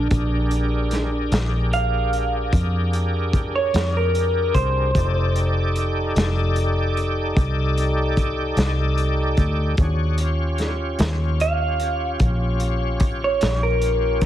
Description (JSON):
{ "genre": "slow blues", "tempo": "50 BPM (dotted quarters)", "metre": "12/8", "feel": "straight", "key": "Bb mixolydian", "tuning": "A4 = 440 Hz", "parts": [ { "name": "electric guitar through a small old amp", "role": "second line", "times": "0.0-14.2 s", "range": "D4 to F5", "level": "-24 LUFS", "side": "right 2 dB", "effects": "spring reverb" }, { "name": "bright tonewheel organ", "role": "sustained chords", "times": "0.0-14.3 s", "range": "Db4 to D5", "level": "-26 LUFS", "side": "equal", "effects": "slow rotary speaker, overdrive, chorus vibrato" }, { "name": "vintage muted fingered electric bass", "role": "bass", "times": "0.0-14.3 s", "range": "F1 to F2", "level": "-22 LUFS", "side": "equal", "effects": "none" }, { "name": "crunchy breakbeat drum kit", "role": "drums", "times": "0.1-14.3 s", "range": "hi-hat, kick drum, snare drum", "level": "-23 LUFS", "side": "equal", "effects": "none" } ], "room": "light reverb", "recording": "heavily compressed radio sound, multiband compression", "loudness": "-19 LUFS", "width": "side -12 dB against mid", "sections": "0.0-14.3 A section", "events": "clean electric guitar solo 0.0-14.3", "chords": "0.0 Bb13; 5.0 F13; 9.8 Eb9" }